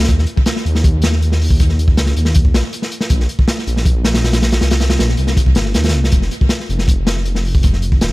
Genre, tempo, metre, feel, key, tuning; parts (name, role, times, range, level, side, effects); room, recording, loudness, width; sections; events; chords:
drum and bass, jungle; 159 BPM; 4/4; straight; A4 = 444 Hz
dark detuned saw bass; bass; 0.0-8.1 s; Eb1 to Eb2; -15 LUFS; equal
crunchy breakbeat drum kit; drums; 0.0-8.1 s; hi-hat, kick drum, snare drum; -14 LUFS; equal; tape echo
little or no reverb; echo-heavy mix; -12 LUFS; side -20 dB against mid
0.0-6.1 A section; 6.1-8.1 A section
drop 0.0-6.1, 6.1-8.1